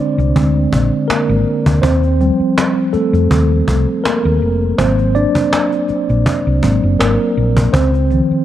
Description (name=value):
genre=lush 1970s-style soul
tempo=81 BPM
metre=4/4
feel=swing 54% on 16ths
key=unclear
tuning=A4 = 440 Hz
part: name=mellow tine electric piano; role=accompaniment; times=0.0-8.4 s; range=D3 to D5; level=-15 LUFS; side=equal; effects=medium stereo tremolo
part: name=hollow-body short-scale fingered electric bass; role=bass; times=0.2-8.3 s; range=F1 to F2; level=-15 LUFS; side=equal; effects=none
part: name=cajon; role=drums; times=0.2-8.2 s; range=none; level=-19 LUFS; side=equal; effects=none
room=light reverb, small room ambience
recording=dark, warm production, faint mains hum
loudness=-12 LUFS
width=side -12 dB against mid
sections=0.0-8.4 A section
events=tine electric piano solo 0.0-8.4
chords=0.0 Bb9; 1.8 Eb69; 4.8 Ab9; 7.7 Dbmaj9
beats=0.36 1.09 | 1.83 2.57 3.31 4.05 | 4.79 5.53 6.26 7.00 | 7.74